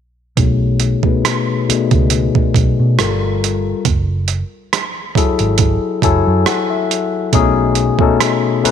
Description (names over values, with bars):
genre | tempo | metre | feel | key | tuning
R&B, neo-soul | 69 BPM | 4/4 | swing 53% on 16ths | unclear | A4 = 440 Hz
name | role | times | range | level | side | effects
barky tine electric piano | accompaniment | 0.4-8.7 s | B2 to A5 | -16 LUFS | left 6 dB | overdrive, low-pass filter
vintage muted fingered electric bass | bass | 0.4-8.7 s | F#1 to B2 | -17 LUFS | right 1 dB | none
boom bap sampler-style drum kit | drums | 0.4-8.7 s | hi-hat, kick drum, rim click | -16 LUFS | right 5 dB | overdrive
room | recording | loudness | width
moderate echo chamber reverb, RT60 2.1 s | 1960s-style stereo, faint mains hum | -13 LUFS | side -8 dB against mid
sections
0.4-8.7 A section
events
filter sweep on tine electric piano 0.4-8.7; tine electric piano fill 5.6-7.3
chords
0.4 B13; 3.0 Gm9; 3.9 F#m9; 7.3 B13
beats
| 0.37 1.24 2.11 2.98 | 3.85 4.72 5.59 6.46 | 7.33 8.20